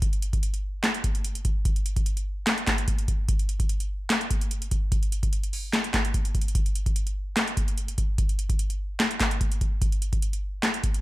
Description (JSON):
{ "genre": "hip hop", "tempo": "147 BPM", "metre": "4/4", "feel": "half-time", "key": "none", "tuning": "none", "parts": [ { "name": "booming analog drum machine", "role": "drums", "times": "0.0-11.0 s", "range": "handclaps, hi-hat, kick drum, snare drum", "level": "-24 LUFS", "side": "equal", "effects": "overdrive" } ], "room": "little or no reverb", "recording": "none", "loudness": "-24 LUFS", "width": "side -18 dB against mid", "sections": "0.0-6.6 A section; 6.6-11.0 A section", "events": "none", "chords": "none" }